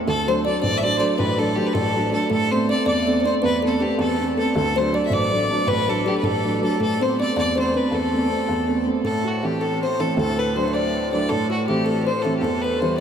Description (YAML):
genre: celtic folk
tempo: 107 BPM (dotted quarters)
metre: 6/8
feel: straight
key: A dorian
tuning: A4 = 440 Hz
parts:
  - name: warm upright piano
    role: accompaniment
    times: 0.0-13.0 s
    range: A1 to D4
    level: -22 LUFS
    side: right 1 dB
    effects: none
  - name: musette accordion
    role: drone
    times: 0.0-0.1, 9.0-13.0 s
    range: A2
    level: -33 LUFS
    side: equal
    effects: stereo widening
  - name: bright fiddle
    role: melody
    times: 0.1-13.0 s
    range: F#4 to E5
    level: -25 LUFS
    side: equal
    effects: none
  - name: kalimba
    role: second line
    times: 0.1-13.0 s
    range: F#4 to E5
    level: -24 LUFS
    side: left 1 dB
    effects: none
room: wet huge ambient reverb, RT60 8.5 s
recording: in a vast, echoing space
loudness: -19 LUFS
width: side -8 dB against mid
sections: 0.1-9.0 A section; 9.0-13.0 B section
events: none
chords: 0.1 D; 2.3 Amadd9; 4.6 D; 6.8 Amadd9; 9.0 Am; 10.2 D; 11.3 Am; 12.4 Em